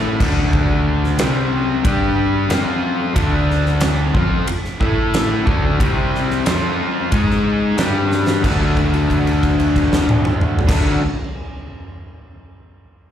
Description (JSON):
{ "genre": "classic rock", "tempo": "91 BPM", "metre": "4/4", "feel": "straight", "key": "unclear", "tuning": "A4 = 440 Hz", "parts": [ { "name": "crunchy overdriven guitar", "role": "riff", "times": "0.0-11.0 s", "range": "C3 to A4", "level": "-20 LUFS", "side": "left 7 dB", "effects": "slapback echo" }, { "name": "distorted electric guitar", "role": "riff", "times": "0.0-11.0 s", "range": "C3 to A4", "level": "-24 LUFS", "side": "right 12 dB", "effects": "overdrive" }, { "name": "fuzz fingered electric bass", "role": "bass", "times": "0.0-11.0 s", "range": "C2 to A2", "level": "-20 LUFS", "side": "equal", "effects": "overdrive" }, { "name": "huge arena drum kit", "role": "drums", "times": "0.2-10.8 s", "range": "crash cymbal, kick drum, ride cymbal, snare drum, toms", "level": "-20 LUFS", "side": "equal", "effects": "none" } ], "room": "light reverb", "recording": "live gig heard through the venue's PA, club reverb", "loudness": "-15 LUFS", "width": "side -10 dB against mid", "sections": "0.0-8.4 A section; 8.4-11.1 B section", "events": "drum fill 8.1-8.4; held note 8.4-10.7", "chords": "0.2 D5; 1.2 C5; 1.8 G5; 2.5 F5; 3.2 D5; 4.8 A5; 5.5 D5; 5.8 C5; 6.5 F5; 7.1 G#5; 7.8 G5; 8.4 D" }